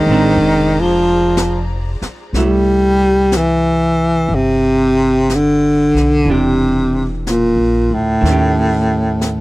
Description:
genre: jazz ballad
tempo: 61 BPM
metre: 4/4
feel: swing 67% on 8ths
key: C major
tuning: A4 = 440 Hz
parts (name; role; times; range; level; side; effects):
- clear baritone saxophone; melody; 0.0-9.4 s; A2 to G3; -13 LUFS; equal; none
- archtop guitar, miked and amplified; accompaniment; 0.0-9.4 s; Eb3 to G4; -21 LUFS; right 4 dB; none
- rich studio string section; sustained chords; 0.0-2.3 s; Ab4 to Bb5; -26 LUFS; left 2 dB; none
- upright bass; bass; 0.0-9.4 s; E1 to Eb2; -20 LUFS; equal; none
- jazz brush drum kit; drums; 0.4-9.4 s; brushed snare drum, hi-hat, snare drum; -25 LUFS; left 1 dB; none
room: studio ambience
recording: dry, close 1970s-style studio recording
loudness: -12 LUFS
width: side -19 dB against mid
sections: 0.0-2.4 A section; 2.4-9.4 B section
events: baritone saxophone solo 0.0-2.4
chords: 0.0 Bb9; 2.4 C6; 6.3 Em7b5; 8.2 Eb7#11

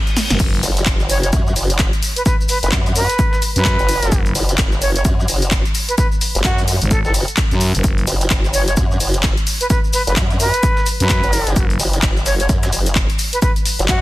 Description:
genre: bass house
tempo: 129 BPM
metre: 4/4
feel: swing 60% on 16ths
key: unclear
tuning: A4 = 441 Hz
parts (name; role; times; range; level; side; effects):
- house drum kit; drums; 0.1-14.0 s; crash cymbal, handclaps, hi-hat, snare drum; -21 LUFS; equal; studio reverb
- maracas; percussion; 0.1-14.0 s; none; -28 LUFS; left 1 dB; none
- breakbeat sampler-style drum kit; drums; 0.2-14.0 s; hi-hat, shaker, snare drum; -30 LUFS; left 3 dB; none
- growling FM bass; bass; 0.3-0.6, 3.6-8.1, 11.0-11.8 s; F#1 to F#2; -18 LUFS; equal; tube saturation, sidechain pumping
- electronic kick drum; drums; 0.4-14.0 s; none; -18 LUFS; equal; studio reverb
- formant-sweep wobble bass; bass; 0.6-14.0 s; F#1 to F#2; -19 LUFS; equal; chorus, tube saturation, sidechain pumping
- bright reedy jazz flute; melody; 1.1-14.0 s; F#4 to C#5; -22 LUFS; right 1 dB; dub echo
room: digital ambience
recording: dense, heavily limited modern master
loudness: -14 LUFS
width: side -17 dB against mid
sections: 0.0-14.0 A section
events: drum fill 0.2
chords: 0.0 F#sus4

